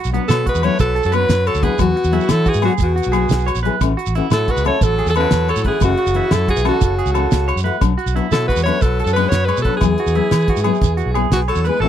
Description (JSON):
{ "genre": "highlife guitar band", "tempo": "120 BPM (dotted quarters)", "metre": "12/8", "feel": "straight", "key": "unclear", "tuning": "A4 = 438 Hz", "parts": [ { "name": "electric guitar at the edge of break-up", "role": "arpeggios", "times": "0.0-11.9 s", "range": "B3 to C#5", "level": "-24 LUFS", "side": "right 9 dB", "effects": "slapback echo" }, { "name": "shekere", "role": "percussion", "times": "0.0-11.7 s", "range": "none", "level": "-25 LUFS", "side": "right 10 dB", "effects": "none" }, { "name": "nylon-string guitar", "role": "accompaniment", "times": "0.1-11.9 s", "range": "E3 to G#4", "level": "-21 LUFS", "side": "left 9 dB", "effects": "none" }, { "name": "vintage muted fingered electric bass", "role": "bass", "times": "0.1-11.9 s", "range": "F#1 to E3", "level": "-19 LUFS", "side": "equal", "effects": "none" }, { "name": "damped 70s drum kit", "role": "drums", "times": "0.1-11.7 s", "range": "hi-hat, kick drum, snare drum", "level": "-19 LUFS", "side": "equal", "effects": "none" }, { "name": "edgy alto saxophone", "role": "melody", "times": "0.3-11.9 s", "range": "F#4 to C#5", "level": "-20 LUFS", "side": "right 1 dB", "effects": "none" }, { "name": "edgy tenor saxophone", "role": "second line", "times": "0.3-11.9 s", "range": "B2 to A3", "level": "-27 LUFS", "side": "left 17 dB", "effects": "none" }, { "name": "agogo bells", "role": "percussion", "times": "0.3-11.6 s", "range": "none", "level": "-28 LUFS", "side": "left 26 dB", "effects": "none" } ], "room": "light reverb", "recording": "dry, close 1970s-style studio recording", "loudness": "-14 LUFS", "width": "side -10 dB against mid", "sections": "0.0-11.8 A section", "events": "none", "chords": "0.0 Bm; 1.8 Eadd9; 3.8 A6; 5.8 F#m7; 7.8 Bm; 9.8 Eadd9" }